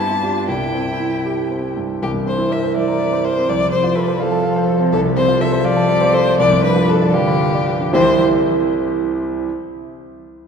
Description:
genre	quick classical-period movement for piano trio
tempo	74-84 BPM (dotted quarters)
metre	6/8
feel	straight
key	C major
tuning	A4 = 440 Hz
part	rich violin	melody	0.0-8.2 s	G4 to A5	-19 LUFS	left 3 dB	none
part	warm cello	second line	0.0-8.2 s	D3 to E4	-22 LUFS	right 3 dB	none
part	warm concert grand piano	accompaniment	0.0-9.5 s	C2 to B5	-18 LUFS	right 1 dB	none
room	wet church reverb, RT60 3.3 s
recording	recorded in a church or concert hall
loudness	-14 LUFS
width	side -6 dB against mid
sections	0.0-2.0 A section; 2.0-7.9 B section; 7.9-9.5 C section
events	none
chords	0.5 C; 2.0 C7; 3.5 F/C; 6.4 G7/C; 7.9 C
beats	| 0.49 1.26 | 2.02 2.76 | 3.48 4.20 | 4.92 5.64 | 6.38 7.14 | 7.93 8.69

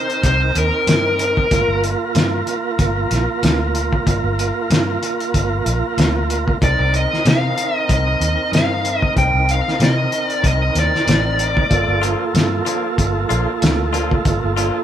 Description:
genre	straight-eighth soul blues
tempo	94 BPM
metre	4/4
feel	swing 56% on 16ths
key	G minor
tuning	A4 = 439 Hz
part	dark smooth lead guitar	melody	0.0-1.8, 6.6-12.0 s	Bb4 to G5	-18 LUFS	left 1 dB	overdrive
part	tonewheel organ	accompaniment	0.0-14.8 s	Bb3 to Bb4	-22 LUFS	right 4 dB	slow rotary speaker, overdrive
part	cloth-damped thuddy drum kit	drums	0.1-14.7 s	hi-hat, kick drum, snare drum	-19 LUFS	equal	none
part	vintage muted fingered electric bass	bass	0.2-14.7 s	G1 to C3	-21 LUFS	equal	none
part	direct-recorded clean electric guitar	stabs	12.0-14.8 s	F3 to F4	-24 LUFS	left 7 dB	none
room	moderate studio reverb, RT60 0.8 s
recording	band playing live in one room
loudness	-15 LUFS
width	side -10 dB against mid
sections	0.0-14.8 A section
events	none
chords	0.0 Cm7; 1.5 Gm7; 6.6 Cm7; 11.7 Gm7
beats	0.24 0.88 | 1.51 2.15 2.79 3.43 | 4.06 4.70 5.34 5.97 | 6.61 7.25 7.89 8.52 | 9.16 9.80 10.43 11.07 | 11.71 12.34 12.98 13.62 | 14.25

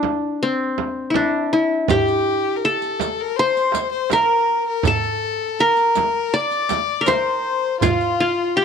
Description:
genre	Turkish makam ensemble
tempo	81 BPM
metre	4/4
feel	straight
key	D makam ussak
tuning	A4 = 440 Hz
part	qanun	melody	0.0-8.6 s	C4 to D5	-19 LUFS	equal	none
part	darbuka	percussion	0.0-8.5 s	none	-28 LUFS	right 6 dB	none
part	frame drum	percussion	0.0-8.0 s	none	-26 LUFS	right 8 dB	none
part	clear violin	second line	1.9-8.6 s	F4 to D5	-23 LUFS	left 11 dB	none
part	riq	percussion	1.9-8.6 s	none	-31 LUFS	right 15 dB	none
room	light reverb, studio ambience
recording	1960s-style stereo with parts hard left and right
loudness	-17 LUFS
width	side -6 dB against mid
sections	0.0-8.6 A section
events	none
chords	none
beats	0.41 1.15 | 1.89 2.63 3.37 4.12 | 4.86 5.60 6.34 7.09 | 7.83 8.57

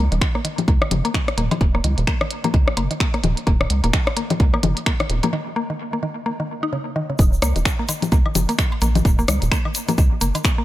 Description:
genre	minimal techno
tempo	129 BPM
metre	4/4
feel	swing 59% on 16ths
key	Eb minor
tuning	A4 = 438 Hz
part	mallet-like synth pluck	riff	0.0-10.6 s	Db3 to Eb4	-25 LUFS	equal	chorus, sidechain pumping, analog delay
part	rubbery square bass	bass	0.0-10.3 s	Eb1 to Db2	-20 LUFS	equal	sidechain pumping
part	minimal click drum kit	drums	0.1-10.6 s	finger snaps, hi-hat	-26 LUFS	equal	analog delay
part	electronic kick drum	drums	0.2-10.6 s	none	-19 LUFS	equal	none
part	electronic cowbell, rim click, congas and woodblock	percussion	0.2-10.4 s	none	-25 LUFS	left 4 dB	dub echo
part	egg shaker	percussion	7.2-10.6 s	none	-30 LUFS	left 3 dB	none
room	little or no reverb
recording	echo-heavy mix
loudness	-18 LUFS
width	side -15 dB against mid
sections	0.0-7.2 A section; 7.2-10.6 B section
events	break 5.3-7.2; drop 7.2-10.6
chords	0.0 Eb7(no3)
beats	0.21 0.68 1.14 | 1.61 2.07 2.54 3.00 | 3.47 3.94 4.40 4.87 | 5.33 5.79 6.26 6.73 | 7.19 7.66 8.12 8.59 | 9.05 9.52 9.98 10.45

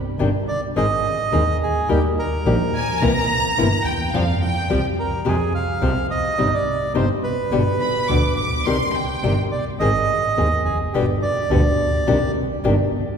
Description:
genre	tango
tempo	106 BPM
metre	4/4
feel	rubato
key	C minor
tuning	A4 = 440 Hz
part	nylon-string guitar	accompaniment	0.2-12.7 s	B2 to Ab4	-22 LUFS	left 3 dB	none
part	warm double bass	bass	0.2-12.9 s	F1 to F2	-22 LUFS	right 1 dB	none
part	bandoneon	melody	0.5-12.3 s	G4 to F5	-23 LUFS	right 4 dB	none
part	clear studio violin section	second line	2.7-9.4 s	F5 to D6	-25 LUFS	equal	none
room	wet church reverb, RT60 3.5 s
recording	recorded in a church or concert hall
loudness	-18 LUFS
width	side -7 dB against mid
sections	0.0-13.2 A section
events	none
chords	0.0 Csus2 (rootless); 0.8 Ab; 1.9 Eb; 3.0 C7; 4.1 Fsus2; 5.3 Fmadd9; 6.4 Cm/G; 7.5 G; 8.7 Cm; 9.8 Ab; 10.9 G; 12.1 Cmadd9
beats	0.19 0.76 1.32 | 1.89 2.46 3.02 3.58 | 4.14 4.70 5.26 5.82 | 6.39 6.95 7.52 8.09 | 8.67 9.24 9.81 10.38 | 10.95 11.51 12.07 12.64

